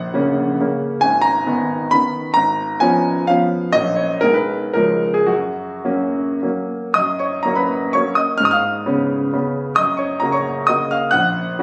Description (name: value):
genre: classical, romantic triple-time dance for piano with dotted rhythms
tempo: 98-143 BPM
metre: 3/4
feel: rubato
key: F# major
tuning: A4 = 440 Hz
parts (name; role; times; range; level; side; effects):
- clear grand piano; solo; 0.0-11.6 s; G#1 to F#6; -18 LUFS; equal; none
room: moderate recital hall reverb, RT60 1.4 s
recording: recorded on a phone in the room, club reverb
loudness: -18 LUFS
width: mono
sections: 0.0-7.0 A section; 7.0-11.6 A section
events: none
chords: 0.0 F#/A#; 1.0 G#m; 2.4 C#7/G#; 3.7 F#/A#; 4.2 G#m7/B; 4.8 C#; 5.3 F#; 8.4 C#7/G#; 9.8 F#; 11.1 F#/A#